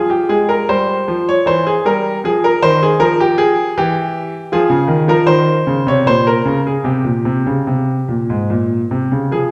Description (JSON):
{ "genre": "classical, baroque-style suite movement for grand piano", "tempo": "72-81 BPM", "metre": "3/4", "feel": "rubato", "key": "F minor", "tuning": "A4 = 440 Hz", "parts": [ { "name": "bright grand piano", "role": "solo", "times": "0.0-9.5 s", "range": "Ab2 to Db5", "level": "-15 LUFS", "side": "equal", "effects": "none" } ], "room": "wet recital hall reverb, RT60 1.4 s", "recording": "recorded in a church or concert hall", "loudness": "-15 LUFS", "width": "mono", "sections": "0.0-9.5 A section", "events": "none", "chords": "0.0 Fm; 1.5 Edim; 2.2 Ebadd9; 3.8 N.C.; 4.5 F5; 6.1 Bbm; 6.9 C5" }